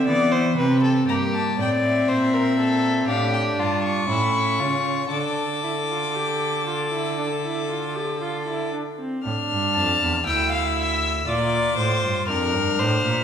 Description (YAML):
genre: classical, baroque-style fugue for string quartet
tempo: 59 BPM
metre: 4/4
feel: straight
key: D minor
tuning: A4 = 441 Hz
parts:
  - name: rich violin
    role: second line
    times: 0.0-13.2 s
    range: E4 to A5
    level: -25 LUFS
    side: left 3 dB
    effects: none
  - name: dark viola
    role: accompaniment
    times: 0.0-13.2 s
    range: Bb3 to G4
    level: -25 LUFS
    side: equal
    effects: none
  - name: rich cello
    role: bass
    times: 0.0-13.2 s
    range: D2 to E3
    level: -26 LUFS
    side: right 2 dB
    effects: none
  - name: rich violin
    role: melody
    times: 1.1-13.2 s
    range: E5 to F6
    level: -26 LUFS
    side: left 5 dB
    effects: none
room: wet recital hall reverb, RT60 1.4 s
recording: recorded in a church or concert hall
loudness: -20 LUFS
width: side -8 dB against mid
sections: 0.0-9.2 A section; 9.2-13.2 B section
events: none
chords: 0.0 C; 1.1 Edim/G; 3.1 Dm/A; 4.1 A; 5.1 Dm; 11.3 Bb